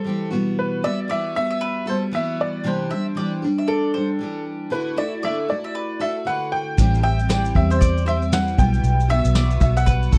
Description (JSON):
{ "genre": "acoustic pop", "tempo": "116 BPM", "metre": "4/4", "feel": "swing 60% on 16ths", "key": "E minor", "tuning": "A4 = 441 Hz", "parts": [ { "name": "bright upright piano", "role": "melody", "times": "0.0-10.2 s", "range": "A4 to G5", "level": "-27 LUFS", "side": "equal", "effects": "slapback echo" }, { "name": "picked steel-string acoustic guitar", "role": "accompaniment", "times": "0.0-10.2 s", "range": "A2 to G4", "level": "-27 LUFS", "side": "equal", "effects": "double-tracked" }, { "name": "mandolin", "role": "arpeggios", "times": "0.8-10.2 s", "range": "A4 to E5", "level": "-35 LUFS", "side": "equal", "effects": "none" }, { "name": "vintage muted fingered electric bass", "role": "bass", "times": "6.8-10.2 s", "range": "A1 to E2", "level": "-22 LUFS", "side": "equal", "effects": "none" }, { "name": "vintage brush drum kit", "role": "drums", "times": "6.8-10.2 s", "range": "kick drum, shaker, snare drum", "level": "-22 LUFS", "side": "equal", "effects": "none" } ], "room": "little or no reverb", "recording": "dry, close 1970s-style studio recording", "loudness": "-21 LUFS", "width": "mono", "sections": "0.0-10.2 A section", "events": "none", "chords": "0.3 Emadd9/B; 2.7 Cadd9; 4.7 Dadd9; 6.8 Am7; 8.6 Emadd9/B", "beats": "0.07 | 0.58 1.10 1.62 2.13 | 2.65 3.17 3.69 4.20 | 4.72 5.24 5.75 6.27 | 6.78 7.30 7.81 8.33 | 8.84 9.36 9.87" }